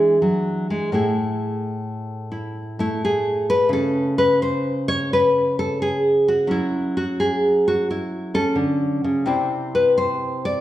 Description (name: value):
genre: solo jazz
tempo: 86 BPM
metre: 4/4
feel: swing 69% on 8ths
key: A major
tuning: A4 = 438 Hz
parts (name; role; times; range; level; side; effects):
- nylon-string guitar; solo; 0.0-10.6 s; A2 to D5; -18 LUFS; equal; none
room: wet recital hall reverb, RT60 1.3 s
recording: recorded in a church or concert hall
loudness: -18 LUFS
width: side -13 dB against mid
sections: 0.9-10.6 A section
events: nylon-string guitar solo 0.9-10.6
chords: 0.0 E7; 0.9 A5; 3.7 N.C.; 6.5 F#5; 9.3 Cadd9